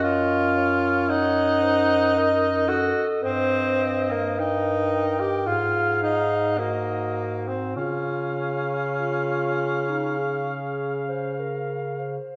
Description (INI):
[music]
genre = classical, lyrical piece for single-reed quartet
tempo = 49-57 BPM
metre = 4/4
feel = rubato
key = Db major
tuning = A4 = 441 Hz
[part]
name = mellow soprano saxophone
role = melody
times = 0.0-12.2 s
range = Db5 to G5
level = -34 LUFS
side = equal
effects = none
[part]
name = mellow clarinet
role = second line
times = 0.0-12.4 s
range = Eb4 to Eb5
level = -32 LUFS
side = equal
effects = none
[part]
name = warm tenor saxophone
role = accompaniment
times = 0.0-11.4 s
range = Bb3 to G4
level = -26 LUFS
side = equal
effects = none
[part]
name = clear bass clarinet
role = bass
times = 0.0-12.2 s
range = Gb2 to Db3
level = -30 LUFS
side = equal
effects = none
[sound]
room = wet recital hall reverb, RT60 1.6 s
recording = none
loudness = -24 LUFS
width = mono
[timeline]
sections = 0.0-12.4 A section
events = none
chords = 0.0 Ebm7/Gb; 3.2 Eb/G; 5.5 Ab5; 7.8 Db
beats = 0.04 1.10 2.16 | 3.23 4.38 5.47 6.58 | 7.76 8.98 10.18 11.39